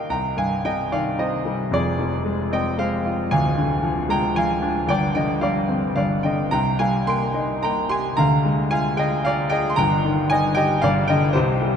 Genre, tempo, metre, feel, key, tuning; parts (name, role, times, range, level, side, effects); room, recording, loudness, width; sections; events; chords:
classical, lyrical solo piano; 113 BPM; 3/4; rubato; C minor; A4 = 435 Hz
clear grand piano; solo; 0.0-11.8 s; D1 to C6; -19 LUFS; equal
wet cathedral reverb, RT60 7.0 s; in a vast, echoing space, nothing above 10.9 kHz; -19 LUFS; side -7 dB against mid
0.1-11.8 A section
0.1 Cm; 1.7 Fm; 3.3 Ddim; 4.9 Gsus4; 6.0 G5; 6.5 Cm7; 8.2 Ddim; 9.8 Ebadd11/G; 10.8 G5